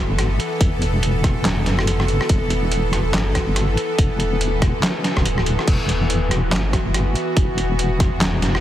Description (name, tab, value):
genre	deep dubstep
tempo	142 BPM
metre	4/4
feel	swing 59% on 16ths, half-time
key	E minor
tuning	A4 = 441 Hz
part	bowed-like drone	sustained chords	0.0-8.6 s	E3 to A4	-24 LUFS	equal	built-in reverb
part	deep soft wobble bass	bass	0.0-8.6 s	D1 to G1	-20 LUFS	equal	chorus
part	trip hop sampler-style drum kit	drums	0.2-8.6 s	crash cymbal, handclaps, hi-hat, rim click, snare drum	-23 LUFS	equal	overdrive
part	electronic kick drum	drums	0.6-8.1 s	none	-20 LUFS	equal	none
room	light reverb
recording	heavily compressed radio sound, multiband compression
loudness	-17 LUFS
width	side -12 dB against mid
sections	0.0-8.6 A section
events	none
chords	0.0 Emadd9